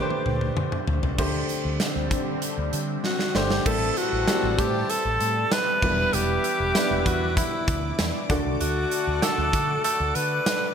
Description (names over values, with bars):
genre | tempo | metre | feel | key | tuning
1980s-style pop | 97 BPM | 4/4 | straight | unclear | A4 = 440 Hz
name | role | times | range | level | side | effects
bright alto saxophone | melody | 0.0-10.7 s | E4 to B4 | -26 LUFS | equal | ping-pong delay
clear concert grand piano | accompaniment | 0.0-10.7 s | A2 to C5 | -30 LUFS | equal | lush chorus
lush unison pad | sustained chords | 0.0-10.7 s | D3 to D6 | -33 LUFS | left 1 dB | chorus, phaser
big rock drum kit | drums | 0.1-10.6 s | crash cymbal, hi-hat, kick drum, snare drum, tambourine, toms | -27 LUFS | right 1 dB | none
mellow fretless electric bass | bass | 0.3-10.4 s | E1 to D3 | -29 LUFS | equal | none
warm horn section | stabs | 3.7-10.7 s | E3 to D5 | -34 LUFS | left 5 dB | ping-pong delay
room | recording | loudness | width
moderate plate reverb, RT60 1.6 s, small room ambience | bright 1980s-style digital production | -22 LUFS | side -7 dB against mid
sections
0.0-1.2 A section; 1.2-3.7 B section; 3.7-10.7 C section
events
drum fill 0.0-1.2, 3.0-3.7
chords
0.0 D7sus4; 3.7 Am7; 5.8 Em7; 8.3 D